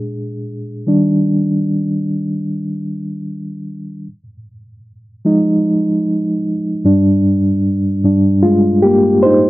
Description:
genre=soul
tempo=75 BPM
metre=4/4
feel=swing 58% on 16ths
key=unclear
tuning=A4 = 440 Hz
part: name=mellow reed electric piano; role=solo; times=0.0-9.5 s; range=G2 to C5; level=-13 LUFS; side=equal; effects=fast tremolo
room=moderate booth ambience, RT60 0.2 s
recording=dry, close 1970s-style studio recording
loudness=-13 LUFS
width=side -17 dB against mid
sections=0.0-9.5 A section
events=reed electric piano solo 0.0-9.5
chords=0.0 Bb7; 0.9 Ebmaj7; 4.1 Fm7; 6.9 Ebmaj7/G (rootless)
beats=0.08 | 0.88 1.67 2.47 3.27 | 4.06 4.86 5.66 6.45 | 7.25 8.05 8.85

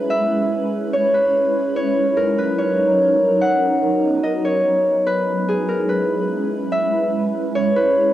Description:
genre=hip hop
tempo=145 BPM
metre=4/4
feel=half-time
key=C# dorian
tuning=A4 = 441 Hz
part: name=Celtic harp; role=melody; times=0.0-8.1 s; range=G#4 to F#5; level=-18 LUFS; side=equal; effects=cassette tape, analog delay
part: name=shimmering ambient pad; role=sustained chords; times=0.0-8.1 s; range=F#3 to B4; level=-21 LUFS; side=right 1 dB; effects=chorus, built-in reverb, phaser
room=light reverb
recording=home recording on cassette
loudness=-16 LUFS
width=side -13 dB against mid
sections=0.0-8.1 A section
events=none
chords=0.0 C#m7; 1.8 D#m7; 3.4 Bmaj7; 5.1 C#m7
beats=| 0.10 0.52 0.93 1.34 | 1.76 2.17 2.59 3.00 | 3.41 3.83 4.24 4.66 | 5.07 5.48 5.90 6.31 | 6.72 7.14 7.55 7.96

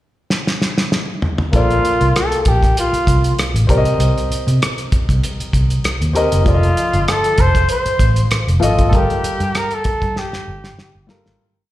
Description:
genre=lush 1970s-style soul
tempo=97 BPM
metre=4/4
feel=swing 54% on 16ths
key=G minor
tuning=A4 = 437 Hz
part: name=cloth-damped thuddy drum kit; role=drums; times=0.3-11.4 s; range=hi-hat, kick drum, rim click, snare drum, toms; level=-18 LUFS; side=equal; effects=none
part: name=dark grand piano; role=accompaniment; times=1.5-11.4 s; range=F3 to Eb5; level=-21 LUFS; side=left 2 dB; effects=slapback echo
part: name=vintage muted fingered electric bass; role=bass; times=1.5-11.4 s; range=F1 to C3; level=-16 LUFS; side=equal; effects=none
part: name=clear flugelhorn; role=melody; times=1.6-11.1 s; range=F4 to C5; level=-18 LUFS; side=equal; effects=slapback echo
room=light reverb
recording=live gig heard through the venue's PA, recital hall reverb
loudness=-14 LUFS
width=side -15 dB against mid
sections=0.0-1.5 pickup bar; 1.5-11.4 verse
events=drum fill 0.3-1.5, 10.2-11.4; fade-out 8.9-11.4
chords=0.0 N.C.; 1.5 Bbmaj9; 3.7 Cm7; 6.5 F7; 8.9 Gm9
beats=0.29 0.91 | 1.53 2.15 2.76 3.38 | 4.00 4.61 5.23 5.85 | 6.46 7.08 7.70 8.31 | 8.93 9.55 10.16 10.78

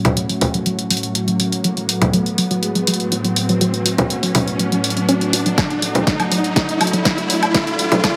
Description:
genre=melodic techno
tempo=122 BPM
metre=4/4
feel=straight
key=F# minor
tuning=A4 = 437 Hz
part: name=lush unison pad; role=sustained chords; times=0.0-8.2 s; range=A2 to F#4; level=-24 LUFS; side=equal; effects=chorus, sidechain pumping
part: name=deep house drum kit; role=drums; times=0.0-8.1 s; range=congas, hi-hat, snare drum, woodblock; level=-21 LUFS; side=equal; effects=overdrive, sidechain pumping on hats, sidechain pumping on perc
part: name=riser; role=sound effects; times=0.4-8.2 s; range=none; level=-27 LUFS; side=equal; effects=none
part: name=tight sequenced synth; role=arpeggios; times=0.2-8.0 s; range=F#3 to F#4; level=-25 LUFS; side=equal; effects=chorus, sidechain pumping, delay
part: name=soft octave-layered synth lead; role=melody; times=1.6-8.2 s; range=G#4 to A4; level=-33 LUFS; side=equal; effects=chorus, tremolo, sidechain pumping, tape echo
part: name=electronic kick drum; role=drums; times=5.6-8.1 s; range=none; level=-24 LUFS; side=equal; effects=none
room=moderate lush hall reverb, RT60 2.2 s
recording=high-pass filter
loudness=-18 LUFS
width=mono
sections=0.0-8.2 A section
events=build-up 0.0-8.2; filter sweep on synth arpeggio sound 0.0-8.2; filter sweep on soft synth lead 0.0-8.2; riser 0.9-8.2; drum fill 5.6-8.2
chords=0.0 F#m; 5.6 D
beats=0.17 0.66 1.15 | 1.64 2.14 2.63 3.12 | 3.61 4.10 4.59 5.09 | 5.58 6.07 6.56 7.05 | 7.54 8.04

